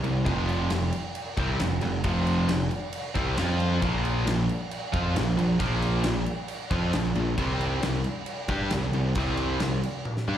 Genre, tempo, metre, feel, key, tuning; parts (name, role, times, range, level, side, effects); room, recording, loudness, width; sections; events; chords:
hard rock; 135 BPM; 4/4; straight; A4 = 440 Hz
high-gain distorted guitar; riff; 0.0-10.4 s; F2 to G4; -28 LUFS; right 1 dB; distortion, slapback echo
fuzz picked electric bass; bass; 0.0-10.4 s; F1 to G2; -27 LUFS; equal; overdrive
huge arena drum kit; drums; 0.0-10.3 s; crash cymbal, kick drum, snare drum, toms; -31 LUFS; equal
small room ambience; live gig heard through the venue's PA, club reverb; -24 LUFS; side -10 dB against mid
0.0-10.4 A section
drum fill 10.1-10.4
0.3 F5; 3.8 Bb5; 7.4 C5